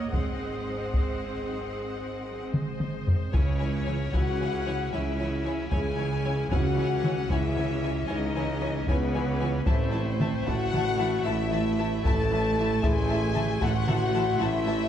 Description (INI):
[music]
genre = cinematic, epic orchestral film score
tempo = 76 BPM (dotted quarters)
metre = 12/8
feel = straight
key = C# minor from 3.3 s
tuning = A4 = 440 Hz
[part]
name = rich symphonic violin section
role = melody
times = 0.0-14.9 s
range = B4 to A5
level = -36 LUFS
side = left 6 dB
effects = none
[part]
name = rich symphonic violin section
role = second line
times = 0.0-14.7 s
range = C5 to A5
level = -38 LUFS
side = left 3 dB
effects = none
[part]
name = rich symphonic viola section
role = accompaniment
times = 0.0-14.7 s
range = E3 to Eb5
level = -37 LUFS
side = right 1 dB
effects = none
[part]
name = rich studio cello section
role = bass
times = 0.0-14.9 s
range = A2 to C4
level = -34 LUFS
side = right 3 dB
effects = none
[part]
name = rich symphonic double bass section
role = bass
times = 0.0-14.9 s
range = Ab1 to C#2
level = -33 LUFS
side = right 2 dB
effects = none
[part]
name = taiko ensemble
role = drums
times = 0.1-14.1 s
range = none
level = -28 LUFS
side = equal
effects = none
[part]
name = mellow French horn section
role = sustained chords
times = 0.7-14.9 s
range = Gb3 to A4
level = -31 LUFS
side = left 4 dB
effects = none
[part]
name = pipe organ, clarinet reed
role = sustained chords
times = 3.3-14.9 s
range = E3 to C6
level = -39 LUFS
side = right 1 dB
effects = none
[part]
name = warm tuba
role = bass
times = 3.3-14.9 s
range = A1 to C#2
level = -34 LUFS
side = right 4 dB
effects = none
[sound]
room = moderate concert hall reverb, RT60 2.2 s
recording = dark, warm production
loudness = -24 LUFS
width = side -10 dB against mid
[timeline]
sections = 0.0-3.3 A section; 3.3-14.9 B section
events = drum fill 2.5-3.3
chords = 0.1 Ab7; 3.3 C#m; 9.7 Am